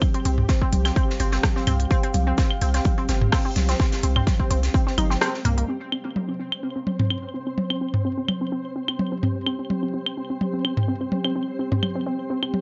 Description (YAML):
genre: minimal techno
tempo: 127 BPM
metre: 4/4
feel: swing 53% on 16ths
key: unclear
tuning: A4 = 441 Hz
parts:
  - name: electronic kick drum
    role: drums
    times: 0.0-4.8 s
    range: none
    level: -24 LUFS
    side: equal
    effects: small room ambience
  - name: unplugged drum kit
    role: drums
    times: 0.0-5.6 s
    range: hi-hat, shaker, snare drum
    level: -38 LUFS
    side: equal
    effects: sidechain pumping on hats, high-pass filter on hats, small room ambience, high-pass filter on snare, sidechain pumping on perc, high-pass filter on perc, high-pass filter on room
  - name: electronic toms and claves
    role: percussion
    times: 0.0-12.6 s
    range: none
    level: -28 LUFS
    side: equal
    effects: small room ambience, delay
  - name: deep dark ambient pad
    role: texture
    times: 0.0-12.6 s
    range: C4 to G5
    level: -36 LUFS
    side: equal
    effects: chorus, built-in reverb, sidechain pumping
  - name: flickering grainy texture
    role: texture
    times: 0.0-12.6 s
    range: G3 to C5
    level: -38 LUFS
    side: equal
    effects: built-in reverb, sidechain pumping
  - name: resonant blip pluck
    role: riff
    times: 0.1-12.5 s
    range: Bb3 to Eb4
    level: -31 LUFS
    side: equal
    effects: chorus, sidechain pumping, tape echo
  - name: house drum kit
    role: drums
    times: 0.1-5.7 s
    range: hi-hat, rim click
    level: -30 LUFS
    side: equal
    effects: small room ambience
  - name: punchy sub bass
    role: bass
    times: 0.3-5.6 s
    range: G1 to C2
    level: -24 LUFS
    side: equal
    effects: sidechain pumping
room: moderate studio reverb, RT60 0.5 s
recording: nothing above 7.5 kHz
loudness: -23 LUFS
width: mono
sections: 0.0-5.7 A section; 5.7-12.6 B section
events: kick drops out 5.2-5.7; band accent 5.2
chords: 0.0 C5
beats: | 0.02 0.49 0.96 1.44 | 1.91 2.38 2.85 3.32 | 3.80 4.27 4.74 5.21 | 5.69 6.16 6.63 7.10 | 7.58 8.05 8.52 8.99 | 9.47 9.94 10.41 10.88 | 11.36 11.83 12.30